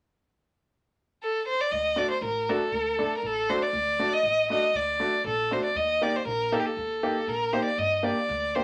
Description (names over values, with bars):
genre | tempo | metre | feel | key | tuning
klezmer | 118 BPM | 2/4 | straight | D phrygian dominant | A4 = 439 Hz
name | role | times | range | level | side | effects
clear violin | melody | 1.2-8.6 s | G4 to Eb5 | -28 LUFS | equal | none
upright bass | bass | 1.7-8.6 s | A1 to G2 | -42 LUFS | equal | none
clear upright piano | accompaniment | 2.0-8.6 s | A3 to A4 | -32 LUFS | equal | none
room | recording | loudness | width
moderate studio ambience, RT60 0.5 s | none | -27 LUFS | mono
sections
0.7-1.7 A section; 1.7-8.6 B section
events
none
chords
0.7 N.C.; 1.7 D; 5.8 Eb; 7.8 Gm